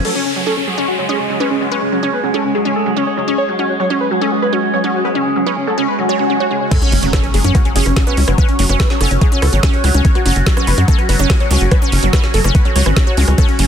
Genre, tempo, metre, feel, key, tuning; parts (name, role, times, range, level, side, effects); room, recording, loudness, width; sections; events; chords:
psychedelic trance; 144 BPM; 4/4; straight; A4 = 439 Hz
wide unison lead; melody; 0.0-13.6 s; C#4 to C#5; -20 LUFS; equal; phaser, sidechain pumping, tape echo
overtone-sweeping drone; sustained chords; 0.0-13.7 s; F#3 to G#4; -21 LUFS; right 1 dB; chorus, built-in reverb, phaser, sidechain pumping
wide unison pluck; riff; 0.0-13.7 s; F#3 to F#4; -20 LUFS; right 1 dB; auto-pan, sidechain pumping, tape echo
garage drum kit; drums; 0.0-0.1, 6.7-13.7 s; crash cymbal, hi-hat, ride cymbal, rim click, snare drum; -22 LUFS; right 1 dB; overdrive, small room ambience
downlifter, swell and impact; sound effects; 0.0-3.4, 6.0-8.4 s; -24 LUFS; equal
electronic kick drum; drums; 6.7-13.5 s; -13 LUFS; equal; overdrive, small room ambience
tight sequencer bass; bass; 6.9-13.7 s; F#1 to F#2; -14 LUFS; equal
light reverb, digital ambience; dense, heavily limited modern master; -12 LUFS; side -8 dB against mid
0.0-6.7 A section; 6.7-13.7 B section
swell 6.0-6.7; drop 6.7-13.7; impact 6.7-8.4
0.0 F#5